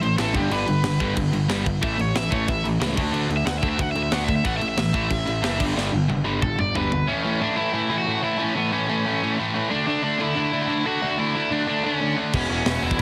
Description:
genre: punk rock.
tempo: 183 BPM.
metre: 4/4.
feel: straight.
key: A mixolydian.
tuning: A4 = 442 Hz.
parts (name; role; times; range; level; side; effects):
cranked stack guitar; melody; 0.0-13.0 s; B3 to F#5; -29 LUFS; equal; overdrive, tape echo.
distorted electric guitar; riff; 0.0-13.0 s; E2 to D4; -26 LUFS; equal; distortion.
fuzz picked electric bass; bass; 0.0-7.0, 12.3-13.0 s; E1 to D2; -29 LUFS; equal; overdrive.
tight metal drum kit; drums; 0.0-7.0, 12.3-13.0 s; crash cymbal, hi-hat, kick drum, snare drum, toms; -30 LUFS; equal; none.
room: light reverb.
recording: heavily compressed radio sound, multiband compression.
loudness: -23 LUFS.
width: mono.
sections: 0.0-7.1 A section; 7.1-13.0 B section.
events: overdriven electric guitar solo 0.0-7.1; drum fill 5.8-7.1.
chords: 0.3 G; 1.8 A; 3.0 D5; 4.5 A5; 5.6 G; 7.1 A; 9.7 D5; 12.3 E5.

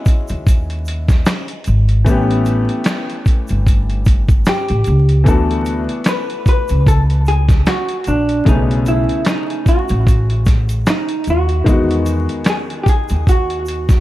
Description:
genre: lo-fi hip hop.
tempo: 75 BPM.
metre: 4/4.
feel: swing 57% on 16ths.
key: unclear.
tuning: A4 = 440 Hz.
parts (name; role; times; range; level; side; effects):
clear upright piano; accompaniment; 0.0-14.0 s; C#3 to G#4; -22 LUFS; left 3 dB; cassette tape, low-pass filter.
dusty soul sampler-style drum kit; drums; 0.1-14.0 s; handclaps, hi-hat, kick drum, snare drum; -14 LUFS; equal; none.
egg shaker; percussion; 0.1-14.0 s; none; -41 LUFS; right 5 dB; none.
upright bass; bass; 0.3-14.0 s; G1 to E2; -16 LUFS; equal; none.
vintage hollow-body jazz guitar; melody; 4.5-14.0 s; D4 to B4; -20 LUFS; equal; low-pass filter, diffuse ambient delay.
room: light reverb, small room ambience.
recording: vinyl crackle.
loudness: -13 LUFS.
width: side -16 dB against mid.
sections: 0.0-14.0 A section.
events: none.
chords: 0.0 E69; 2.1 A9; 5.3 D69; 8.5 B13; 11.7 Emaj9.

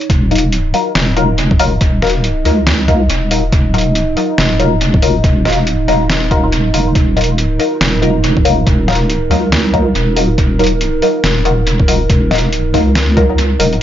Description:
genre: deep dubstep.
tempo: 140 BPM.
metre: 4/4.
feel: swing 60% on 16ths, half-time.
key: Eb minor.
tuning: A4 = 445 Hz.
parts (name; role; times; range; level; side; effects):
dark analog pad; sustained chords; 0.0-13.8 s; Eb4 to Eb5; -20 LUFS; right 4 dB; chorus.
trip hop sampler-style drum kit; drums; 0.0-13.8 s; hi-hat, snare drum; -18 LUFS; equal; overdrive, small room reverb, dub echo.
deep soft wobble bass; bass; 0.1-13.8 s; Eb1 to Db2; -14 LUFS; equal; chorus.
electronic kick drum; drums; 0.1-13.3 s; none; -14 LUFS; equal; overdrive, small room reverb.
filtered dub chord stab; stabs; 0.3-13.7 s; Gb3 to Bb4; -17 LUFS; left 3 dB; phaser, wide subtle chorus, cassette tape, dub echo.
room: light reverb.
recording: echo-heavy mix, nothing above 7.5 kHz.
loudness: -10 LUFS.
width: side -11 dB against mid.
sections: 0.0-13.8 A section.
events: kick drops out 13.4-13.8.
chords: 0.0 Ebmadd9.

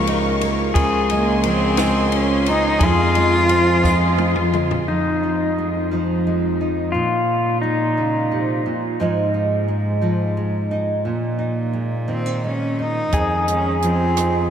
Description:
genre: acoustic folk-pop ballad.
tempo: 58 BPM (dotted quarters).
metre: 6/8.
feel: straight.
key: F minor.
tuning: A4 = 439 Hz.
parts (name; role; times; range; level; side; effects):
pedal steel guitar; second line; 0.0-8.6, 13.1-14.5 s; Eb4 to Bb4; -23 LUFS; left 2 dB; none.
nylon-string guitar; accompaniment; 0.0-14.5 s; F2 to Ab4; -23 LUFS; right 2 dB; lush chorus.
warm studio string section; sustained chords; 0.0-4.9 s; Ab4 to Db6; -27 LUFS; equal; none.
warm cello; bass; 0.0-14.5 s; Db2 to Bb2; -23 LUFS; equal; none.
compact cocktail drum kit; drums; 0.1-4.9, 13.1-14.3 s; hi-hat, kick drum, ride cymbal, rim click, snare drum, toms; -25 LUFS; equal; none.
warm cello; melody; 1.1-4.6, 12.1-14.5 s; Bb3 to F4; -22 LUFS; left 1 dB; tape echo.
room: wet huge ambient reverb, RT60 8.2 s.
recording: dreamy mix soaked in reverb.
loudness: -17 LUFS.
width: side -8 dB against mid.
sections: 0.0-4.9 A section; 4.9-13.1 B section; 13.1-14.5 C section.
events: drum fill 3.8-4.9; pedal steel guitar solo 4.9-13.1.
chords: 0.0 Db69; 0.8 Bbm9/Db; 2.8 Fm7; 6.9 Bbm7; 9.0 Fm7/Ab; 11.1 Bb7sus4; 13.1 Fm7.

